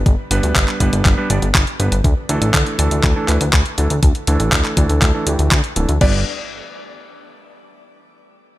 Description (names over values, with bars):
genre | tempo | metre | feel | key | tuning
italo disco | 121 BPM | 4/4 | straight | G major | A4 = 440 Hz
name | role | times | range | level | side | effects
chorused synth bass | bass | 0.0-6.2 s | D1 to D2 | -18 LUFS | equal | none
clean 12-bit digital drum machine | drums | 0.1-6.1 s | crash cymbal, handclaps, hi-hat | -20 LUFS | equal | overdrive, studio reverb
electronic kick drum | drums | 0.1-6.1 s | none | -16 LUFS | equal | overdrive, studio reverb
bright electric grand piano | stabs | 0.3-6.2 s | E3 to D5 | -22 LUFS | right 2 dB | low-pass filter, shimmer reverb, tape echo
warm grand piano | melody | 6.0-6.2 s | D5 | -26 LUFS | right 1 dB | shimmer reverb, tape echo
room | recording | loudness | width
light reverb, digital ambience | none | -14 LUFS | side -16 dB against mid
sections
0.0-6.0 A section; 6.0-8.0 B section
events
filter sweep on electric grand piano 0.0-6.0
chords
0.0 G; 2.0 Dsus2; 6.0 G